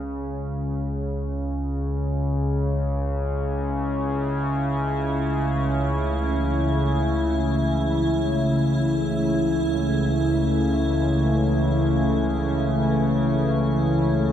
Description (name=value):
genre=dark ambient drone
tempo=free time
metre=none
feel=none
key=unclear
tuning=A4 = 440 Hz
part: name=analog drone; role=drone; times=0.0-14.3 s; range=C#2 to C#3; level=-23 LUFS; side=equal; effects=chorus
part: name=icy glass pad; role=texture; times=3.8-14.3 s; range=E4 to E5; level=-29 LUFS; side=left 2 dB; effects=chorus, built-in reverb
part: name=sweeping resonant pad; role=sustained chords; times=5.5-14.3 s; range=C#3 to E4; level=-24 LUFS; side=equal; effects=chorus
room=wet huge ambient reverb, RT60 8.2 s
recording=dark, warm production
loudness=-21 LUFS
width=side -10 dB against mid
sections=0.0-14.3 A section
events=none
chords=0.0 N.C.; 3.0 A/C#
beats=free time